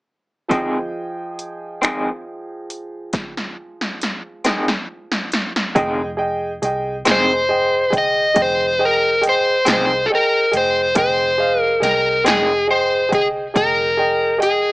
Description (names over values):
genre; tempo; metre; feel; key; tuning
slow blues; 46 BPM (dotted quarters); 12/8; straight; F minor; A4 = 437 Hz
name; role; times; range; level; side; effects
bright upright piano; accompaniment; 0.5-14.7 s; F3 to Ab5; -22 LUFS; right 1 dB; none
electric guitar through a small old amp; accompaniment; 0.5-12.5 s; F2 to C4; -20 LUFS; equal; tremolo
80s electronic pad drums; drums; 0.5-14.6 s; finger snaps, hi-hat, kick drum, snare drum; -20 LUFS; equal; overdrive
vintage muted fingered electric bass; bass; 5.8-14.7 s; F1 to C2; -34 LUFS; equal; none
overdriven slide guitar; melody; 7.1-14.7 s; Ab4 to Eb5; -16 LUFS; left 1 dB; none
room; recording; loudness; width
light reverb; small speaker sound; -15 LUFS; side -23 dB against mid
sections
0.5-5.8 A section; 5.8-14.7 B section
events
drum fill 3.1-5.8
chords
0.5 Fm7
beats
| 0.52 1.83 3.14 4.45 | 5.75 7.05 8.36 9.66 | 10.96 12.26 13.56